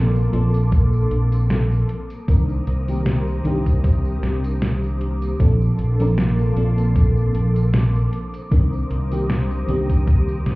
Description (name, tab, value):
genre	vaporwave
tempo	77 BPM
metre	4/4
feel	swing 54% on 16ths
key	unclear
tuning	A4 = 440 Hz
part	FM electric piano with soft pad layer	accompaniment	0.0-10.6 s	Eb3 to Bb4	-24 LUFS	equal	ensemble chorus, vintage 12-bit sampler grit, analog delay
part	soft string machine	sustained chords	0.0-10.6 s	Bb3 to Eb6	-33 LUFS	equal	phaser, ensemble chorus
part	fingered electric bass with an envelope filter	bass	0.0-10.6 s	Bb1 to C2	-19 LUFS	equal	none
part	detuned 8-bit digital drum machine	drums	0.2-10.6 s	hi-hat, snare drum, tambourine	-24 LUFS	equal	overdrive
part	electronic kick drum	drums	0.7-10.2 s	none	-17 LUFS	equal	none
room	light reverb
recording	heard muffled through a wall, club reverb, cassette tape, EQ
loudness	-17 LUFS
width	side -21 dB against mid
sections	0.0-10.6 A section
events	none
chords	0.0 Bbmaj9; 1.9 Cm9; 5.4 Bbmaj9; 8.1 Cm9